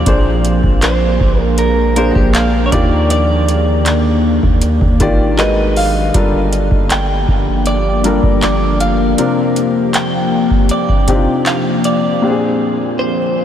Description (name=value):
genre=contemporary R&B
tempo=79 BPM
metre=4/4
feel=straight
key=unclear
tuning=A4 = 439 Hz
part: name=direct-recorded clean electric guitar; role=melody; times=0.0-13.4 s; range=F#4 to G5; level=-19 LUFS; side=right 1 dB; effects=lush chorus, diffuse ambient delay
part: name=warm baby grand piano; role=accompaniment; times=0.0-13.4 s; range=Bb2 to D5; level=-18 LUFS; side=left 2 dB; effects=none
part: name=deep dark ambient pad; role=sustained chords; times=0.0-13.4 s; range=Eb3 to Ab4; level=-18 LUFS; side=left 1 dB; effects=chorus, built-in reverb
part: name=long sustained 808-style bass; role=bass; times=0.0-9.1 s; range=G1 to Eb2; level=-16 LUFS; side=equal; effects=none
part: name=booming analog drum machine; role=drums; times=0.1-12.0 s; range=handclaps, hi-hat, kick drum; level=-18 LUFS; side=equal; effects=none
room=moderate huge ambient reverb, RT60 8.0 s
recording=dreamy mix soaked in reverb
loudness=-11 LUFS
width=side -10 dB against mid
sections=0.0-13.4 A section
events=none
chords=0.1 Bb7; 2.7 Ebmaj7; 5.4 Abm7; 6.1 Gm7; 9.2 C7sus4; 12.2 Bb7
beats=| 0.07 0.82 1.58 2.34 | 3.10 3.86 4.62 5.38 | 6.14 6.90 7.66 8.42 | 9.18 9.94 10.70 11.46 | 12.22 12.98